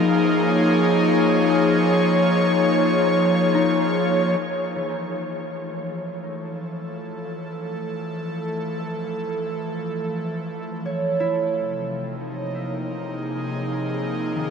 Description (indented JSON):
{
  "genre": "ambient",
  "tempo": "free time",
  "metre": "none",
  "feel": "none",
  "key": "unclear",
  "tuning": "A4 = 440 Hz",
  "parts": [
    { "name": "airy breathy pad", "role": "sustained chords", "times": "0.0-14.5 s", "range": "B#2 to C#5", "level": "-20 LUFS", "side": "left 1 dB", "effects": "chorus" },
    { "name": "concert harp", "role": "arpeggios", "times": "3.5-14.5 s", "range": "D#3 to C#5", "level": "-30 LUFS", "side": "right 2 dB", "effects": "tape echo" }
  ],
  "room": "wet huge ambient reverb, RT60 9.3 s",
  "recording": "none",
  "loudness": "-20 LUFS",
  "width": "side -6 dB against mid",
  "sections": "0.0-4.4 A section; 4.4-14.5 B section",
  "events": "fade-in on analog synth pad 4.4-14.5; fade-in on harp 4.4-14.5",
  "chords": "0.0 A#m7; 4.4 Fmaj7#5/E; 11.6 A#m7"
}